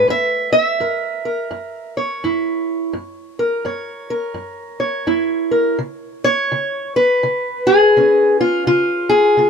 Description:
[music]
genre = acoustic country blues, solo or duo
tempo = 84 BPM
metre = 4/4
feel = swing 62% on 8ths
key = F# mixolydian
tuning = A4 = 441 Hz
[part]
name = fingerpicked steel-string acoustic guitar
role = solo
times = 0.0-9.5 s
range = F#2 to E5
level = -15 LUFS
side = equal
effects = none
[sound]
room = little or no reverb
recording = dry, close 1970s-style studio recording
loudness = -15 LUFS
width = side -6 dB against mid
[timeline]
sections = 0.0-9.5 A section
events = none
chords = 0.1 F#7; 5.8 C#7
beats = | 0.08 0.79 1.51 2.22 | 2.94 3.66 4.37 5.09 | 5.80 6.52 7.23 7.95 | 8.66 9.37

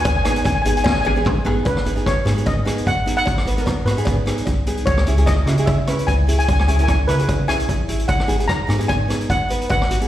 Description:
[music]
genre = calypso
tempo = 149 BPM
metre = 4/4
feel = swing 54% on 16ths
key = G# minor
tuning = A4 = 439 Hz
[part]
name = steel pan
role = melody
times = 0.0-10.1 s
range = B4 to A#5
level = -23 LUFS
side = left 1 dB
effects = plate reverb, slapback echo
[part]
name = nylon-string guitar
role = accompaniment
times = 0.0-10.1 s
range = B3 to B4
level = -24 LUFS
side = right 1 dB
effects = plate reverb, slapback echo
[part]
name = metallic FM bass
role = bass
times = 0.0-10.1 s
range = G#1 to C#3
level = -20 LUFS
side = equal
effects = none
[part]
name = cowbell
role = percussion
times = 0.0-9.8 s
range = none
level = -32 LUFS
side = left 1 dB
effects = slapback echo
[part]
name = street-band drum kit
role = drums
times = 0.1-10.1 s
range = hi-hat, kick drum, rim click, snare drum, toms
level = -22 LUFS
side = equal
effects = none
[sound]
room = light reverb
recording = live gig heard through the venue's PA, recital hall reverb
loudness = -16 LUFS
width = side -12 dB against mid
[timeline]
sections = 0.0-1.7 A section; 1.7-10.1 B section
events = drum fill 0.9-1.7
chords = 0.1 G#m; 1.7 G#m7; 4.9 C#m7; 8.1 G#m7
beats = | 0.05 0.45 0.85 1.25 | 1.66 2.06 2.46 2.86 | 3.26 3.67 4.07 4.47 | 4.87 5.27 5.68 6.08 | 6.48 6.88 7.29 7.69 | 8.09 8.49 8.90 9.30 | 9.70

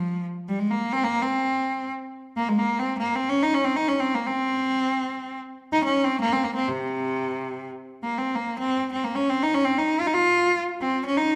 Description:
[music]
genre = Arabic maqam ensemble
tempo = free time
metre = none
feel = none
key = C maqam kurd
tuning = A4 = 443 Hz
[part]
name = bright cello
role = solo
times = 0.0-11.4 s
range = C3 to F4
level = -25 LUFS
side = equal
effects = none
[sound]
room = wet recital hall reverb, RT60 1.5 s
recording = dark, warm production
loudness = -25 LUFS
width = mono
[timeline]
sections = 0.0-7.9 A section; 7.9-11.4 A section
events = none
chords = none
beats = free time

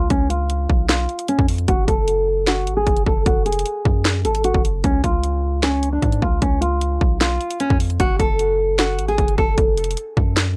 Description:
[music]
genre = hip hop, trap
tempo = 152 BPM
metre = 4/4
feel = half-time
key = F# harmonic minor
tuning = A4 = 440 Hz
[part]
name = nylon-string guitar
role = melody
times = 0.0-9.5 s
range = C#4 to A4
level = -23 LUFS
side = equal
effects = low-pass filter, analog delay
[part]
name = long sustained 808-style bass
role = bass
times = 0.0-10.6 s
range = E#1 to G#2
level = -24 LUFS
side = equal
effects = none
[part]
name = trap drum kit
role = drums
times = 0.1-10.5 s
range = hi-hat, kick drum, snare drum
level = -22 LUFS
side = equal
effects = overdrive
[sound]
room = light reverb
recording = dry, gritty hardware recording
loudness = -19 LUFS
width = mono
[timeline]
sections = 0.0-10.6 A section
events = filter sweep on nylon-string guitar 0.0-8.0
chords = 0.0 C#; 1.7 F#madd9; 4.8 C#; 8.0 F#m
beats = | 0.10 0.50 0.89 1.29 | 1.68 2.08 2.47 2.87 | 3.26 3.66 4.05 4.45 | 4.84 5.24 5.63 6.02 | 6.42 6.81 7.21 7.60 | 8.00 8.39 8.79 9.18 | 9.58 9.97 10.37

